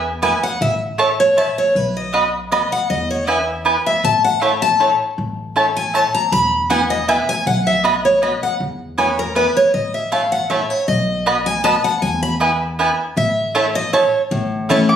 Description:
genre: bluegrass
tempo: 158 BPM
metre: 3/4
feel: swing 53% on 8ths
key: A lydian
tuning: A4 = 435 Hz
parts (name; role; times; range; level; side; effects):
- upright bass; bass; 0.0-15.0 s; E1 to E2; -25 LUFS; equal; none
- picked steel-string acoustic guitar; accompaniment; 0.2-15.0 s; A2 to B5; -17 LUFS; left 1 dB; none
- mandolin; stabs; 0.2-14.8 s; A3 to B5; -17 LUFS; right 2 dB; none
- mandolin; melody; 14.9-15.0 s; D6; -14 LUFS; right 1 dB; none
room: moderate small room reverb, RT60 0.5 s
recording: recorded on a phone in the room, studio reverb, compression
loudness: -15 LUFS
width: side -9 dB against mid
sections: 0.0-5.2 A section; 5.2-14.3 A section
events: steel-string acoustic guitar solo 0.0-14.3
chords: 0.0 E; 0.6 A; 1.8 B; 2.9 E; 4.0 A; 6.3 E; 7.5 B; 8.6 E; 9.7 A; 10.9 B; 12.0 E; 13.2 A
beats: 0.23 | 0.61 0.99 1.38 | 1.76 2.14 2.52 | 2.90 3.28 3.66 | 4.04 4.42 4.80 | 5.18 5.56 5.94 | 6.32 6.70 7.08 | 7.46 7.84 8.22 | 8.60 8.98 9.36 | 9.74 10.12 10.50 | 10.88 11.27 11.65 | 12.03 12.41 12.79 | 13.17 13.55 13.93 | 14.31 14.70

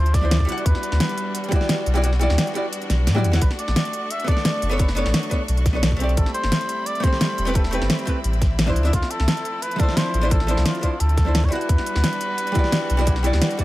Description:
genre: liquid drum and bass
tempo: 174 BPM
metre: 4/4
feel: straight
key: unclear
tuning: A4 = 442 Hz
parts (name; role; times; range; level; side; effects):
- trumpet with cup mute; melody; 0.0-13.6 s; F4 to E5; -28 LUFS; equal; digital delay
- bright studio string section; sustained chords; 0.0-13.6 s; F3 to C#6; -32 LUFS; left 1 dB; sidechain pumping
- warm sub bass; bass; 0.0-13.4 s; E1 to A2; -20 LUFS; equal; none
- electronic kick drum; drums; 0.1-13.6 s; none; -21 LUFS; equal; none
- pop drum kit; drums; 0.1-13.6 s; hi-hat, snare drum, toms; -24 LUFS; equal; none
- archtop guitar, miked and amplified; accompaniment; 0.2-13.6 s; F3 to F#5; -26 LUFS; equal; digital delay
room: little or no reverb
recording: none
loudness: -18 LUFS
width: side -16 dB against mid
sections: 0.0-13.6 A section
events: kick drops out 2.0-3.4; drum fill 2.9-3.4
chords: 0.5 Em9; 3.4 Bm9; 6.2 Am9; 8.8 Dm9; 11.5 Em9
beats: 0.31 | 0.66 1.00 1.35 1.69 | 2.04 2.38 2.73 3.07 | 3.42 3.76 4.11 4.45 | 4.80 5.14 5.49 5.83 | 6.17 6.52 6.87 7.21 | 7.55 7.90 8.24 8.59 | 8.93 9.28 9.62 9.97 | 10.31 10.66 11.00 11.35 | 11.69 12.04 12.38 12.73 | 13.07 13.42

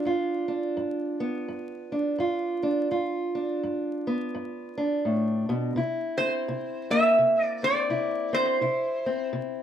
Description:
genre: acoustic country blues, solo or duo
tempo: 84 BPM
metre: 4/4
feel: swing 60% on 8ths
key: G mixolydian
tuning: A4 = 440 Hz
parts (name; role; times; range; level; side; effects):
- fingerpicked steel-string acoustic guitar; accompaniment; 0.0-9.6 s; G2 to F4; -27 LUFS; equal; none
- metal-body resonator slide guitar; melody; 6.2-9.3 s; C5 to E5; -23 LUFS; right 1 dB; slapback echo
room: moderate studio reverb, RT60 0.6 s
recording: vinyl crackle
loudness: -24 LUFS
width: side -9 dB against mid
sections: 0.0-9.6 A section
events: none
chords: 0.0 G7; 5.8 C7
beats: | 0.05 0.76 1.47 2.19 | 2.90 3.61 4.33 5.04 | 5.75 6.47 7.18 7.90 | 8.61 9.32

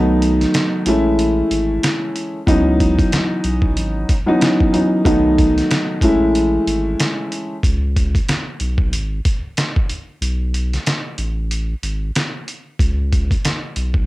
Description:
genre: hip hop, boom-bap hip-hop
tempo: 93 BPM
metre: 4/4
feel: swing 59% on 16ths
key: C# minor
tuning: A4 = 440 Hz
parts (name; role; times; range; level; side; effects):
- dark concert grand piano; accompaniment; 0.0-7.5 s; D#3 to E4; -16 LUFS; equal; high-pass filter, low-pass filter, cassette tape
- saturated sub bass; bass; 0.0-14.1 s; G#1 to C#2; -20 LUFS; equal; none
- trip hop sampler-style drum kit; drums; 0.2-14.1 s; hi-hat, kick drum, snare drum; -19 LUFS; equal; cassette tape
room: light reverb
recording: home recording on cassette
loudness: -15 LUFS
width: side -18 dB against mid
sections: 0.0-12.8 A section; 12.8-14.1 B section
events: break 0.0-2.5, 7.6-12.8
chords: 0.0 B7; 0.9 Amaj7; 2.5 C#m11; 5.1 B7; 6.0 Amaj7; 7.6 C#5; 10.2 N.C.; 12.8 C#5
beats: 0.54 1.18 1.83 | 2.47 3.12 3.76 4.41 | 5.05 5.70 6.34 6.99 | 7.63 8.28 8.92 9.57 | 10.21 10.86 11.50 12.15 | 12.79 13.44

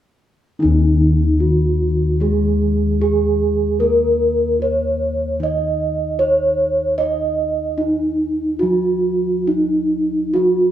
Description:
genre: Javanese gamelan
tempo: 75 BPM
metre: 4/4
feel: straight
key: Eb slendro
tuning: A4 = 440 Hz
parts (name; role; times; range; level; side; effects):
- gamelan-type bronze metallophone; melody; 0.6-10.7 s; Eb4 to Eb5; -17 LUFS; right 1 dB; none
- gamelan-type bronze metallophone; accompaniment; 0.6-10.7 s; Eb3 to Eb4; -24 LUFS; right 1 dB; none
- gamelan-type bossed gongs; bass; 0.6-10.7 s; Eb2 to Eb5; -21 LUFS; left 2 dB; none
room: moderate large studio reverb, RT60 1.1 s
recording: band playing live in one room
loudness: -15 LUFS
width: side -11 dB against mid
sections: 0.6-10.7 A section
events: none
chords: none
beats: | 0.59 1.39 2.19 2.99 | 3.79 4.59 5.39 6.19 | 6.99 7.80 8.63 9.48 | 10.35

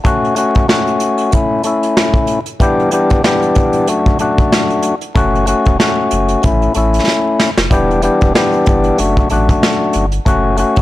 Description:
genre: hip hop, boom-bap hip-hop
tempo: 94 BPM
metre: 4/4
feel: swing 56% on 16ths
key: unclear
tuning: A4 = 441 Hz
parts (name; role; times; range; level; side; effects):
- percussive tonewheel organ; accompaniment; 0.0-10.8 s; F#2 to G4; -13 LUFS; left 2 dB; overdrive, high-pass filter, low-pass filter
- soft brush drum kit; drums; 0.0-10.8 s; hi-hat, kick drum, snare drum; -15 LUFS; equal; soft clipping on snare
- warm sub bass; bass; 5.2-10.8 s; E1 to A1; -18 LUFS; equal; transformer saturation
room: light reverb, small room ambience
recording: blown-out, overdriven recording, vinyl crackle, overdrive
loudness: -11 LUFS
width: side -16 dB against mid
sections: 0.0-10.8 A section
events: break 0.1-5.2; drum fill 7.1-7.7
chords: 0.1 F#m; 1.3 A; 2.6 Em7; 3.9 D/F#; 5.2 F#m; 6.4 A; 7.7 Em7; 9.0 D/F#; 10.3 F#m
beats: | 0.05 0.69 1.33 1.97 | 2.60 3.24 3.88 4.52 | 5.16 5.80 6.43 7.07 | 7.71 8.35 8.99 9.63 | 10.26

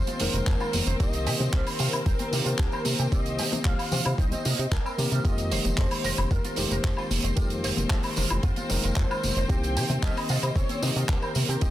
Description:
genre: nu-disco, nu disco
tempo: 113 BPM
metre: 4/4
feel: straight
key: F minor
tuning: A4 = 444 Hz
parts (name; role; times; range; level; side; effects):
- wide unison lead; melody; 0.0-11.7 s; Bb4 to G5; -35 LUFS; equal; dub echo
- tine electric piano; accompaniment; 0.0-11.7 s; Eb3 to Bb4; -32 LUFS; left 2 dB; sidechain pumping
- clear studio string section; sustained chords; 0.0-11.7 s; C4 to C5; -37 LUFS; left 4 dB; sidechain pumping
- chorused synth bass; bass; 0.0-11.7 s; F1 to C3; -28 LUFS; equal; none
- electric guitar with an envelope filter; riff; 0.1-11.7 s; G3 to C5; -38 LUFS; right 4 dB; analog chorus
- damped 70s drum kit; drums; 0.1-11.7 s; handclaps, hi-hat, tambourine, woodblock; -30 LUFS; right 2 dB; studio reverb, soft clipping on snare
- congas and bongos; percussion; 0.1-11.5 s; none; -36 LUFS; left 3 dB; none
- electronic kick drum; drums; 0.5-11.7 s; none; -26 LUFS; equal; studio reverb
room: small room reverb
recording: dense, heavily limited modern master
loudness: -23 LUFS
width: side -13 dB against mid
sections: 0.0-11.7 A section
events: none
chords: 0.0 Fm11; 1.0 Cm7; 5.2 Fm11; 9.5 Cm7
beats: 0.47 | 1.00 1.53 2.06 2.59 | 3.12 3.65 4.19 4.72 | 5.25 5.78 6.31 6.84 | 7.37 7.90 8.43 8.96 | 9.50 10.03 10.56 11.09 | 11.62

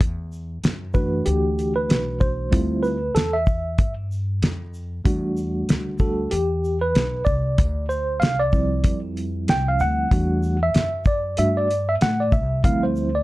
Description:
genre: hip hop, jazz-hop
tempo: 95 BPM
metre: 4/4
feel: swing 59% on 16ths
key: unclear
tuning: A4 = 440 Hz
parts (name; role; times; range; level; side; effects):
- upright bass; bass; 0.0-13.2 s; B1 to A2; -25 LUFS; left 1 dB; none
- cloth-damped thuddy drum kit; drums; 0.0-13.1 s; hi-hat, kick drum, shaker, snare drum; -20 LUFS; equal; none
- mellow tine electric piano; accompaniment; 0.9-13.2 s; E3 to G5; -23 LUFS; right 1 dB; medium tremolo
room: light reverb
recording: dark, warm production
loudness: -19 LUFS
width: side -18 dB against mid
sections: 0.0-13.2 A section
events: tine electric piano solo 0.0-13.2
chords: 0.0 E9sus4; 2.5 Dm11; 5.1 Em11; 7.6 Dm11; 10.1 Em11; 12.6 Dm11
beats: | 0.00 0.64 1.27 1.90 | 2.53 3.16 3.79 4.42 | 5.06 5.69 6.32 6.95 | 7.58 8.21 8.85 9.48 | 10.11 10.74 11.37 12.00 | 12.64

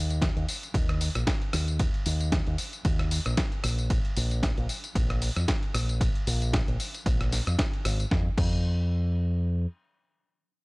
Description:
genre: nu-disco, nu disco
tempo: 114 BPM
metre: 4/4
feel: swing 55% on 16ths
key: unclear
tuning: A4 = 438 Hz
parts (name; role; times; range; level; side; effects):
- fingered electric bass with an envelope filter; bass; 0.0-9.7 s; Ab1 to F2; -27 LUFS; equal; tube saturation
- dusty soul sampler-style drum kit; drums; 0.1-8.5 s; crash cymbal, hi-hat, ride cymbal, rim click, snare drum, tambourine; -32 LUFS; equal; none
- electronic kick drum; drums; 0.2-8.5 s; none; -28 LUFS; equal; none
room: little or no reverb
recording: dry, gritty hardware recording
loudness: -25 LUFS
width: side -27 dB against mid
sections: 0.0-8.1 A section; 8.1-10.6 B section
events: drop 0.0-8.1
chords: none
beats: 0.22 0.75 1.27 | 1.80 2.33 2.85 3.38 | 3.90 4.43 4.96 5.48 | 6.01 6.54 7.06 7.59 | 8.12 8.64 9.17

